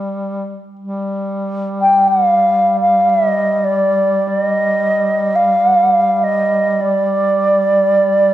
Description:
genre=caucasian folk, Caucasian lament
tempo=free time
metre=none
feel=none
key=unclear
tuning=A4 = 440 Hz
part: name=warm duduk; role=drone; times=0.0-8.3 s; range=G3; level=-21 LUFS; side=equal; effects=none
part: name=wooden-headed alto flute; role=melody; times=1.8-8.3 s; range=D5 to G5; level=-12 LUFS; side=equal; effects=none
room=moderate scoring stage reverb, RT60 1.7 s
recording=dark, warm production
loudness=-12 LUFS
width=side -13 dB against mid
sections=0.8-8.3 A section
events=none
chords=none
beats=free time

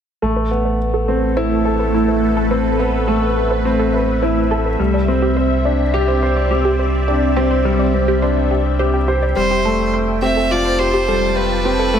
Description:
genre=electronica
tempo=105 BPM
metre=4/4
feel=straight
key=A minor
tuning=A4 = 439 Hz
part: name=lush unison pad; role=sustained chords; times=0.9-12.0 s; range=A3 to A5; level=-22 LUFS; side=right 1 dB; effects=chorus, phaser
part: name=analog pluck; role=arpeggios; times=0.2-11.9 s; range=G4 to D5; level=-24 LUFS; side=right 2 dB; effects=chorus, phaser, ping-pong delay
part: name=clear upright piano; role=riff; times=0.2-12.0 s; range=G3 to C5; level=-18 LUFS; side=left 2 dB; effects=ping-pong delay
part: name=warm sub bass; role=bass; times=0.2-12.0 s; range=F1 to C2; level=-20 LUFS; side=equal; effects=none
part: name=clear violin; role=melody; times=9.4-12.0 s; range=B4 to E5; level=-18 LUFS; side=right 2 dB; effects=ping-pong delay
room=moderate echo chamber reverb, RT60 1.8 s, small room ambience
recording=none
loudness=-14 LUFS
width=side -8 dB against mid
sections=0.2-12.0 A section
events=filter sweep on synth arpeggio sound 0.2-12.0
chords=0.2 Amadd9; 4.8 Csus2; 9.4 Fadd9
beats=| 0.22 0.80 1.37 1.94 | 2.51 3.08 3.65 4.22 | 4.79 5.37 5.94 6.51 | 7.08 7.65 8.22 8.79 | 9.37 9.94 10.51 11.08 | 11.65

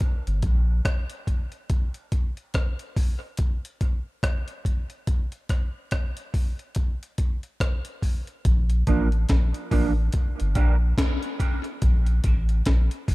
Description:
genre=dub reggae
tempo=71 BPM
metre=4/4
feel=swing 60% on 16ths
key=Bb major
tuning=A4 = 441 Hz
part: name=breakbeat sampler-style drum kit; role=drums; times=0.0-13.1 s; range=hi-hat, kick drum, rim click, snare drum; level=-24 LUFS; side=equal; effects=none
part: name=soft dub sub bass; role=bass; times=0.3-0.8, 8.5-13.1 s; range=G1 to Bb1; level=-21 LUFS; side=equal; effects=none
part: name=mellow electric guitar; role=accompaniment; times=8.9-13.1 s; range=F3 to D4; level=-30 LUFS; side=right 4 dB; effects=ensemble chorus, high-pass filter, dub echo
room=little or no reverb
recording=dark, warm production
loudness=-22 LUFS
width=side -20 dB against mid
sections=0.0-8.4 A section; 8.4-13.1 A section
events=break 0.0-8.4; filter sweep on clean electric guitar 8.4-13.1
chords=0.0 Gm; 1.7 N.C.; 8.4 Bb; 10.1 Gm; 11.8 Bb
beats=0.01 0.85 | 1.70 2.54 3.38 4.23 | 5.07 5.92 6.76 7.60 | 8.45 9.29 10.13 10.97 | 11.82 12.66

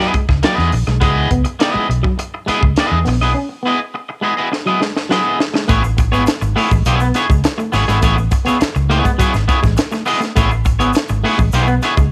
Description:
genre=funk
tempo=103 BPM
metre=4/4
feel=straight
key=unclear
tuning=A4 = 442 Hz
part: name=electric guitar at the edge of break-up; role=accompaniment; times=0.0-12.0 s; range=B3 to D#5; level=-20 LUFS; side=equal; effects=none
part: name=electric guitar at the edge of break-up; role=riff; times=0.0-12.1 s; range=F#3 to C#4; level=-25 LUFS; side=equal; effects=none
part: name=crisp fusion drum kit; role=drums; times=0.0-12.1 s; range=hi-hat, kick drum, snare drum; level=-20 LUFS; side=equal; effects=cassette tape
part: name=vintage muted fingered electric bass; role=bass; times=0.1-12.1 s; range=G#1 to E2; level=-19 LUFS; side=equal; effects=none
part: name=egg shaker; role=percussion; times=5.7-12.1 s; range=none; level=-41 LUFS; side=equal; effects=none
room=small room ambience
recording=home recording on cassette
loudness=-16 LUFS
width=mono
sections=0.0-5.7 A section; 5.7-12.1 B section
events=break 3.4-5.7; drum fill 4.5-5.7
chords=0.0 C#m9; 5.7 Amaj9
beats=0.43 | 1.01 1.60 2.18 2.77 | 3.35 3.94 4.52 5.11 | 5.69 6.28 6.86 7.45 | 8.03 8.61 9.20 9.78 | 10.37 10.95 11.54

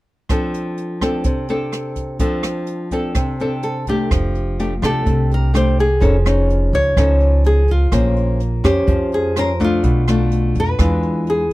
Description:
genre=bossa nova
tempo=126 BPM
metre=4/4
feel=straight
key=F major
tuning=A4 = 441 Hz
part: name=nylon-string guitar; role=accompaniment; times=0.3-11.5 s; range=B2 to C5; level=-20 LUFS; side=left 1 dB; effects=none
part: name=jazz brush drum kit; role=drums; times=0.3-11.5 s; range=hi-hat, kick drum, rim click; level=-22 LUFS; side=right 1 dB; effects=none
part: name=nylon-string guitar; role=melody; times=3.6-11.5 s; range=F4 to C#5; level=-21 LUFS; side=equal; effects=none
part: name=upright bass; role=bass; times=4.1-11.5 s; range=F1 to F2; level=-17 LUFS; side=equal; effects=none
room=small room ambience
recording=dry, close 1970s-style studio recording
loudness=-15 LUFS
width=side -18 dB against mid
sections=0.3-4.1 A section; 4.1-11.5 B section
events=none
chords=0.3 F6; 4.1 F69; 6.0 F7alt; 7.9 Bbm9; 9.8 Bm7b5; 10.8 E7b9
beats=| 0.29 0.77 1.25 1.73 | 2.20 2.68 3.16 3.63 | 4.11 4.59 5.07 5.54 | 6.02 6.50 6.97 7.45 | 7.93 8.41 8.88 9.36 | 9.84 10.32 10.79 11.27

